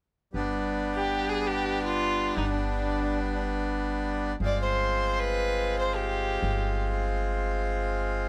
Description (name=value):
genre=klezmer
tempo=free time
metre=none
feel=none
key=unclear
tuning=A4 = 440 Hz
part: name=accordion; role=accompaniment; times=0.3-8.3 s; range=G3 to F4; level=-32 LUFS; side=equal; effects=none
part: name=upright bass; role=bass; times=0.3-8.3 s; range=G1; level=-34 LUFS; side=equal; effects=none
part: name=rich violin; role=melody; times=1.0-6.8 s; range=D4 to D5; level=-31 LUFS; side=equal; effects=none
room=light reverb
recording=none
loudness=-28 LUFS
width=mono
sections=0.3-8.3 A section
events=none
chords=0.3 G; 4.4 Fm/G